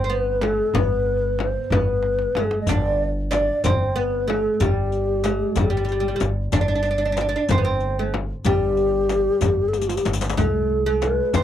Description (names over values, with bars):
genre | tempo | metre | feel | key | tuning
Persian modal ensemble | 62 BPM (dotted quarters) | 6/8 | straight | G dastgah homayun | A4 = 440 Hz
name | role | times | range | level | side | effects
mellow hollow low ney | melody | 0.0-11.4 s | F4 to Eb5 | -23 LUFS | left 2 dB | none
oud | second line | 0.0-11.4 s | G3 to D4 | -26 LUFS | right 4 dB | none
upright bass | bass | 0.0-11.4 s | G1 to Eb2 | -25 LUFS | equal | none
tombak | percussion | 0.1-11.4 s | none | -27 LUFS | right 2 dB | none
frame drum | percussion | 0.4-11.4 s | none | -27 LUFS | left 6 dB | none
riq | percussion | 2.7-11.4 s | none | -32 LUFS | left 9 dB | none
room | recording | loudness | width
little or no reverb | dry, close 1970s-style studio recording | -19 LUFS | side -10 dB against mid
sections
0.0-10.4 A section; 10.4-11.4 B section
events
drum fill 2.0-2.7, 9.7-10.4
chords
none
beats
| 0.74 1.71 | 2.67 3.64 | 4.60 5.57 | 6.53 7.49 | 8.46 9.42 | 10.38 11.35